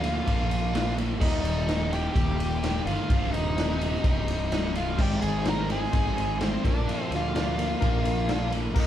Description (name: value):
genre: classic rock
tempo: 127 BPM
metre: 4/4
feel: straight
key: unclear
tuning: A4 = 440 Hz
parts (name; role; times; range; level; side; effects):
- octave-fuzz lead guitar; melody; 0.0-8.9 s; C4 to Bb4; -31 LUFS; left 1 dB; distortion
- crunchy overdriven guitar; riff; 0.0-8.9 s; C2 to Bb3; -31 LUFS; equal; none
- fuzz picked electric bass; bass; 0.0-8.9 s; C1 to D2; -30 LUFS; right 1 dB; overdrive
- raw garage drum kit; drums; 0.0-8.9 s; crash cymbal, kick drum, ride cymbal, snare drum; -28 LUFS; equal; none
- barky reed electric piano; accompaniment; 5.0-8.9 s; Bb3 to C5; -35 LUFS; left 6 dB; overdrive, tremolo
room: moderate large studio reverb, RT60 1.0 s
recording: band playing live in one room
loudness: -24 LUFS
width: side -11 dB against mid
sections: 0.0-8.9 A section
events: none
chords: 0.0 Bb; 1.2 Eb; 3.1 Cm; 5.0 Ab; 6.6 Bb